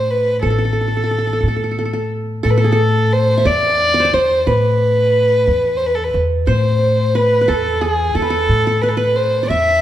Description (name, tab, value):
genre	arabic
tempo	60 BPM (dotted quarters)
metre	6/8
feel	straight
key	A maqam nahawand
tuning	A4 = 440 Hz
part	dark violin	melody	0.0-9.8 s	G#4 to E5	-16 LUFS	equal	none
part	qanun	second line	0.0-9.8 s	G#4 to E5	-22 LUFS	right 2 dB	none
part	upright bass	bass	0.0-9.8 s	A1 to A2	-18 LUFS	left 1 dB	none
room	moderate recital hall reverb, RT60 1.6 s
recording	recorded in a church or concert hall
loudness	-13 LUFS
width	side -12 dB against mid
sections	0.0-2.5 A section; 2.5-9.8 B section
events	none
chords	none